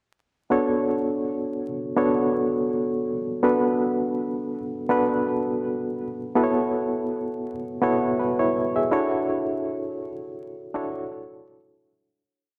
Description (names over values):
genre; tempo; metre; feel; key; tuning
R&B; 82 BPM; 4/4; swing 54% on 16ths; B minor; A4 = 436 Hz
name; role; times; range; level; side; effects
barky reed electric piano; solo; 0.5-12.2 s; B3 to E5; -25 LUFS; equal; overdrive, fast tremolo, diffuse ambient delay
room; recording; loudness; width
wet lush hall reverb, RT60 2.0 s; dreamy mix soaked in reverb, vinyl crackle; -25 LUFS; mono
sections
0.5-12.2 groove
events
fade-out 9.3-12.2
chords
0.5 Bm9; 6.4 A69; 8.9 Dmaj9